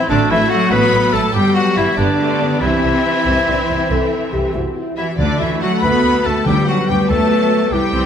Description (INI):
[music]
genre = cinematic, heroic adventure film score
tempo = 94 BPM (dotted quarters)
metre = 12/8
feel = straight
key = unclear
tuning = A4 = 440 Hz
[part]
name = bright clarinet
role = second line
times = 0.0-8.1 s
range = D4 to B4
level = -19 LUFS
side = left 1 dB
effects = none
[part]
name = warm symphonic violin section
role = second line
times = 0.0-8.1 s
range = D5 to B5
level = -23 LUFS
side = left 2 dB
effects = none
[part]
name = rich symphonic viola section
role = accompaniment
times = 0.0-8.1 s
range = E3 to C4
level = -22 LUFS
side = right 1 dB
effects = none
[part]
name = rich symphonic violin section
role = melody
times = 0.1-8.1 s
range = D5 to B5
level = -25 LUFS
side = left 5 dB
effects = none
[part]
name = dark French horn section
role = sustained chords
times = 0.1-8.1 s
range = G3 to B4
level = -22 LUFS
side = left 5 dB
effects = none
[part]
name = clear symphonic cello section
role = bass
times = 0.1-8.1 s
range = D3 to B3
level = -20 LUFS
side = right 3 dB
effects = none
[part]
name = rich symphonic double bass section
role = bass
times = 0.1-8.0 s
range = G1 to D2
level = -22 LUFS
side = right 3 dB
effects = none
[part]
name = timpani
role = percussion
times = 5.2-7.1 s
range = D3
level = -22 LUFS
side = left 2 dB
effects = none
[sound]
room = moderate concert hall reverb, RT60 2.2 s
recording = none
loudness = -13 LUFS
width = side -8 dB against mid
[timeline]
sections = 0.0-8.1 A section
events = none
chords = 0.1 D/A; 1.4 G; 2.6 C; 5.2 D; 6.5 G/D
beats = | 0.10 0.72 1.35 1.99 | 2.62 3.27 3.91 4.55 | 5.19 5.83 6.47 7.10 | 7.73